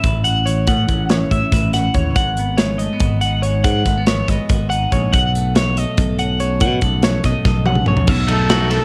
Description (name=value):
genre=math rock and midwest emo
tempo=283 BPM (eighths)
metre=7/8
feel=straight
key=unclear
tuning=A4 = 440 Hz
part: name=twelve-string electric guitar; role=accompaniment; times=0.0-8.8 s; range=G#2 to B4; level=-26 LUFS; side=equal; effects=phaser, cassette tape
part: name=twelve-string electric guitar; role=arpeggios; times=0.0-8.8 s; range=F#4 to F#5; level=-24 LUFS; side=equal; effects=spring reverb, cassette tape
part: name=modern bright picked electric bass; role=bass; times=0.0-8.8 s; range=G#1 to B2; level=-22 LUFS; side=equal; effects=none
part: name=modern studio drum kit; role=drums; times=0.0-8.8 s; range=crash cymbal, hi-hat, kick drum, ride cymbal, snare drum, toms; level=-21 LUFS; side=equal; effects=cassette tape
part: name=breathy trumpet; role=melody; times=8.3-8.8 s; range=A4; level=-23 LUFS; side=equal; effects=cassette tape
part: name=overdriven semi-hollow guitar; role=riff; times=8.3-8.8 s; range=B2 to D#4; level=-26 LUFS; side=equal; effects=spring reverb, cassette tape
room=little or no reverb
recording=home recording on cassette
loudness=-17 LUFS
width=mono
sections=0.0-8.1 A section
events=drum fill 7.5-8.1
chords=0.0 A69; 2.2 G#m7; 5.1 B9; 8.1 B7sus4